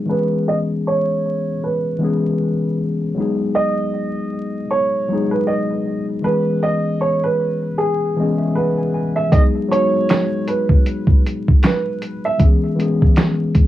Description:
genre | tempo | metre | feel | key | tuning
lo-fi hip hop | 78 BPM | 4/4 | swing 57% on 16ths | G# minor | A4 = 436 Hz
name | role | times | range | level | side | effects
tine electric piano | accompaniment | 0.0-13.7 s | E3 to G#5 | -20 LUFS | left 2 dB | overdrive, cassette tape, low-pass filter
dark upright piano | melody | 0.1-12.4 s | G#4 to E5 | -20 LUFS | right 3 dB | low-pass filter, cassette tape, analog delay
lo-fi sampler-style drum kit | drums | 9.3-13.7 s | handclaps, hi-hat, kick drum, snare drum | -13 LUFS | equal | vintage 12-bit sampler grit, cassette tape
room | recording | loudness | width
moderate booth ambience, RT60 0.2 s | home recording on cassette, vinyl crackle | -16 LUFS | side -13 dB against mid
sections
0.0-9.3 A section; 9.3-13.7 B section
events
filter sweep 0.0-9.3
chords
0.1 C#m7; 3.2 G#m7; 6.2 C#m7; 9.3 G#m7; 12.4 C#m7

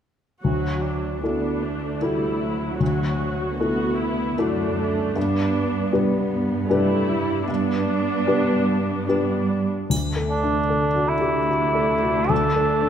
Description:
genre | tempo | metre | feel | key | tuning
cinematic, emotional film score for orchestra | 76 BPM | 3/4 | rubato | D major | A4 = 438 Hz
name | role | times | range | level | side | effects
dark baby grand piano | accompaniment | 0.4-12.9 s | D2 to B4 | -24 LUFS | left 3 dB | none
dark symphonic viola section | accompaniment | 0.4-12.9 s | F#3 to F#4 | -25 LUFS | right 2 dB | none
dark studio cello section | bass | 0.5-12.9 s | D2 to G2 | -27 LUFS | right 2 dB | none
triangle | percussion | 9.9-11.5 s | none | -32 LUFS | left 1 dB | none
mellow cor anglais | melody | 10.3-12.9 s | D4 to A4 | -21 LUFS | right 1 dB | none
room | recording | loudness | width
light reverb | none | -20 LUFS | side -8 dB against mid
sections
0.5-9.9 A section; 9.9-12.9 B section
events
none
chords
0.5 Dadd9; 5.2 G; 9.9 Dadd9

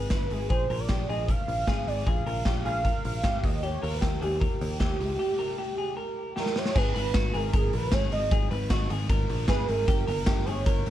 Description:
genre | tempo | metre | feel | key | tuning
jangly indie pop | 154 BPM | 4/4 | straight | G# minor from 6.8 s | A4 = 435 Hz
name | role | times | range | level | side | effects
warm velvety synth lead | melody | 0.0-10.9 s | G4 to E#5 | -31 LUFS | right 3 dB | chorus, digital delay
electric guitar through a small old amp | arpeggios | 0.0-10.9 s | F#4 to B4 | -34 LUFS | left 3 dB | digital delay
picked electric bass | bass | 0.0-10.9 s | G1 to D#2 | -31 LUFS | equal | none
raw garage drum kit | drums | 0.1-10.9 s | crash cymbal, hi-hat, kick drum, ride cymbal, snare drum | -28 LUFS | equal | none
room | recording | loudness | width
little or no reverb | dark, warm production | -24 LUFS | side -12 dB against mid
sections
0.0-6.8 A section; 6.8-10.9 B section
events
drum fill 6.4-6.8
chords
0.0 G#m; 0.5 A#5; 3.4 D#7; 6.8 G#madd9; 9.9 D#/G (rootless)

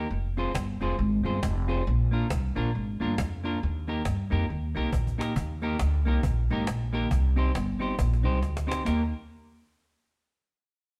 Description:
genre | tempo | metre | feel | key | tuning
ska | 137 BPM | 4/4 | swing 60% on 8ths | Eb major | A4 = 438 Hz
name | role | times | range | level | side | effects
clean electric guitar | accompaniment | 0.0-9.0 s | Bb3 to C5 | -34 LUFS | equal | none
upright bass | bass | 0.0-9.1 s | F1 to G2 | -29 LUFS | equal | none
cajon | drums | 0.4-9.0 s | none | -35 LUFS | equal | none
room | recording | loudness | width
moderate stone room reverb, RT60 1.1 s | band playing live in one room | -28 LUFS | mono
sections
0.0-5.4 A section; 5.4-8.9 B section; 8.9-10.6 C section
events
drum fill 4.9-5.4, 8.0-8.9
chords
0.1 Fm; 1.9 Bb; 3.6 Eb; 7.1 Cm; 8.9 Eb

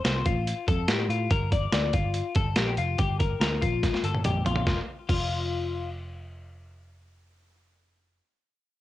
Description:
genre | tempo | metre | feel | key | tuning
jangly indie pop | 143 BPM | 4/4 | straight | unclear | A4 = 440 Hz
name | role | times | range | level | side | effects
twelve-string electric guitar | arpeggios | 0.0-5.9 s | F4 to D5 | -30 LUFS | left 7 dB | cassette tape, tape echo
vintage muted picked electric bass | bass | 0.0-8.2 s | F1 to A2 | -29 LUFS | right 1 dB | none
boom bap sampler-style drum kit | drums | 0.1-5.2 s | crash cymbal, hi-hat, kick drum, snare drum, toms | -27 LUFS | right 1 dB | overdrive, cassette tape
room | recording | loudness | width
light reverb | home recording on cassette | -24 LUFS | side -14 dB against mid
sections
0.0-4.7 A section; 4.7-8.0 B section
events
drum fill 3.8-4.7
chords
0.0 Fadd9; 1.3 Gm7; 4.7 N.C.

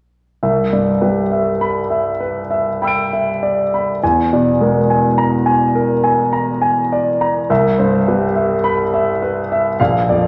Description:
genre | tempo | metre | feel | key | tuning
classical, impressionist solo piano | 52 BPM | 3/4 | rubato | unclear | A4 = 443 Hz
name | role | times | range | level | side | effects
clear concert grand piano | solo | 0.4-10.3 s | Bb1 to D7 | -16 LUFS | equal | none
room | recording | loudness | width
wet recital hall reverb, RT60 1.7 s | faint mains hum | -16 LUFS | mono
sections
0.4-10.3 A section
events
none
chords
0.4 Cmaj9; 4.0 E7#11; 7.5 Cmaj7

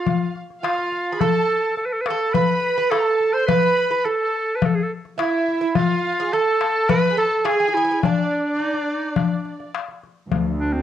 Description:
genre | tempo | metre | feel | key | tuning
Turkish makam ensemble | 106 BPM | 4/4 | straight | D makam nikriz | A4 = 440 Hz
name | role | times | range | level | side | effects
bright clarinet | melody | 0.0-10.8 s | C4 to C5 | -21 LUFS | right 1 dB | cassette tape
Greek bouzouki | second line | 0.0-9.7 s | D4 to B4 | -25 LUFS | right 8 dB | cassette tape
warm studio violin section | second line | 0.0-9.7 s | D5 to C6 | -27 LUFS | equal | cassette tape
darbuka | percussion | 0.1-10.7 s | none | -22 LUFS | left 7 dB | none
warm studio cello section | drone | 10.3-10.8 s | D2 | -24 LUFS | right 1 dB | cassette tape
room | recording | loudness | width
moderate spring reverb, RT60 1.1 s, studio reverb | home recording on cassette | -18 LUFS | side -10 dB against mid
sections
0.0-10.3 A section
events
none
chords
none

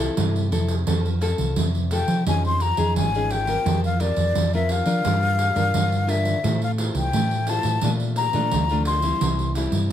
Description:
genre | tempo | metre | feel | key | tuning
samba and choro | 86 BPM | 4/4 | straight | F major | A4 = 441 Hz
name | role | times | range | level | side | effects
nylon-string guitar | accompaniment | 0.0-9.9 s | Bb2 to C5 | -28 LUFS | left 3 dB | none
hollow-body short-scale fingered electric bass | bass | 0.0-9.9 s | Ab1 to F3 | -23 LUFS | equal | none
pandeiro | percussion | 0.2-9.9 s | none | -26 LUFS | right 4 dB | none
mellow hollow concert flute | melody | 1.9-9.5 s | D5 to C6 | -24 LUFS | left 4 dB | none
room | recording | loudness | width
little or no reverb | close, detailed microphones | -20 LUFS | side -10 dB against mid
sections
0.9-9.9 A section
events
none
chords
0.0 Fmaj7; 0.9 F; 2.3 Dbadd9/F; 3.7 Bbsus2/F; 5.0 Gm7; 6.4 Fmaj7; 7.8 Bbmaj7; 9.2 C

